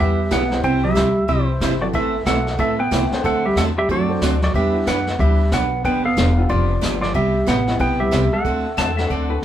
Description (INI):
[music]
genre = country, western swing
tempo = 184 BPM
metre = 4/4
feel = swing 62% on 8ths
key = unclear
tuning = A4 = 442 Hz
[part]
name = clean lap steel guitar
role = melody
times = 0.0-9.4 s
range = E4 to G5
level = -22 LUFS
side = equal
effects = none
[part]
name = hollow-body jazz guitar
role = second line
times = 0.0-9.4 s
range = E3 to C4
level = -23 LUFS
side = right 2 dB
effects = none
[part]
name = picked acoustic archtop guitar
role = accompaniment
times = 0.0-9.3 s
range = C3 to B4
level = -24 LUFS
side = right 3 dB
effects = none
[part]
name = upright bass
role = bass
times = 0.0-9.4 s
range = E1 to F#2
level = -22 LUFS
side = left 1 dB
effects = none
[part]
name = vintage brush drum kit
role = drums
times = 0.3-9.4 s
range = brushed snare drum, hi-hat, kick drum, snare drum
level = -27 LUFS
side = left 1 dB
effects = none
[part]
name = warm upright piano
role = accompaniment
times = 0.5-9.4 s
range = G3 to C5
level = -28 LUFS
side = left 3 dB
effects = none
[part]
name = pedal steel guitar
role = second line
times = 8.8-9.4 s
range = B4 to A5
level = -25 LUFS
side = left 5 dB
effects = none
[sound]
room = wet studio reverb, RT60 0.5 s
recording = band playing live in one room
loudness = -16 LUFS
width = side -11 dB against mid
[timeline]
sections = 0.0-9.4 A section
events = none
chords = 0.0 Em; 0.6 C; 1.9 Amadd9; 3.2 D7; 4.5 Em7; 5.8 G7; 7.1 Cmaj7; 8.5 D7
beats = 0.31 | 0.64 0.96 1.29 1.61 | 1.94 2.27 2.59 2.92 | 3.24 3.57 3.90 4.22 | 4.55 4.87 5.20 5.52 | 5.85 6.17 6.50 6.82 | 7.15 7.47 7.80 8.13 | 8.45 8.78 9.10 9.43